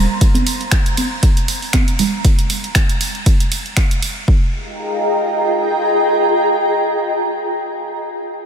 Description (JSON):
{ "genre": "deep house", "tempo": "118 BPM", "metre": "4/4", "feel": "swing 56% on 16ths", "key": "F minor", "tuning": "A4 = 440 Hz", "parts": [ { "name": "dark analog pad", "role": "sustained chords", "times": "0.0-7.6 s", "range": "Ab4 to C6", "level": "-23 LUFS", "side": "left 1 dB", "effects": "chorus, sidechain pumping" }, { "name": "granular cloud pad", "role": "texture", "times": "0.0-7.9 s", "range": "F4 to Bb5", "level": "-19 LUFS", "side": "equal", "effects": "built-in reverb, sidechain pumping" }, { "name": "electronic kick drum", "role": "drums", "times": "0.2-4.4 s", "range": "none", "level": "-14 LUFS", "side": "equal", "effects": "overdrive" }, { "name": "punchy analog drum machine", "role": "drums", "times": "0.2-4.1 s", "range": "finger snaps, hi-hat, ride cymbal", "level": "-21 LUFS", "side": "right 2 dB", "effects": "overdrive" }, { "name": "congas", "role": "percussion", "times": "0.3-2.1 s", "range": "none", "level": "-23 LUFS", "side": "right 4 dB", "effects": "none" } ], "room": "moderate huge ambient reverb, RT60 7.2 s", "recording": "dreamy mix soaked in reverb", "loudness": "-14 LUFS", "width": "side -8 dB against mid", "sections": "0.0-4.3 A section; 4.3-8.3 B section", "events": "drop 0.0-4.3", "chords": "0.0 Bbsus2; 4.3 Fm11" }